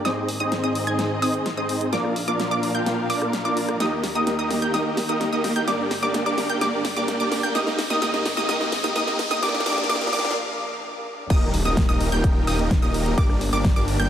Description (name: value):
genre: EDM, festival progressive house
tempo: 128 BPM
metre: 4/4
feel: straight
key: Eb major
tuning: A4 = 440 Hz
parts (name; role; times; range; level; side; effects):
- rich studio string section; sustained chords; 0.0-14.1 s; Eb2 to F5; -31 LUFS; left 1 dB; sidechain pumping
- wide unison pluck; arpeggios; 0.0-14.1 s; D6 to Ab6; -27 LUFS; equal; sidechain pumping, dub echo
- supersaw chords; riff; 0.0-14.1 s; Bb3 to Ab5; -25 LUFS; right 1 dB; sidechain pumping, low-pass filter, dub echo
- riser and impact; sound effects; 3.7-13.2 s; none; -33 LUFS; equal; none
- big-room dance drum kit; drums; 0.1-14.1 s; crash cymbal, hi-hat, rim click, snare drum; -29 LUFS; equal; high-pass filter on toms, high-pass filter on hats, high-pass filter on snare, high-pass filter on cymbals
- wide detuned saw bass; bass; 11.3-14.1 s; Eb1 to G1; -24 LUFS; equal; chorus, sidechain pumping
- electronic kick drum; drums; 11.3-13.7 s; none; -20 LUFS; equal; none
room: moderate huge ambient reverb, RT60 6.9 s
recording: high-pass filter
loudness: -20 LUFS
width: side -10 dB against mid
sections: 0.0-11.3 A section; 11.3-14.1 B section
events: build-up 0.0-11.3; drum fill 0.0-10.4; filter sweep on supersaw synth 0.0-11.3; filter sweep 0.0-11.3; riser 3.7-10.4; break 10.4-11.3; drop 11.3-14.1; impact 11.3-13.2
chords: 0.1 Ab; 1.9 Bb; 3.8 Eb; 5.7 Gm; 7.6 Ab; 9.4 Bb; 11.3 Eb; 13.2 Gm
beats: | 0.05 0.52 0.99 1.46 | 1.93 2.40 2.86 3.33 | 3.80 4.27 4.74 5.21 | 5.68 6.14 6.61 7.08 | 7.55 8.02 8.49 8.96 | 9.43 9.89 10.36 10.83 | 11.30 11.77 12.24 12.71 | 13.18 13.64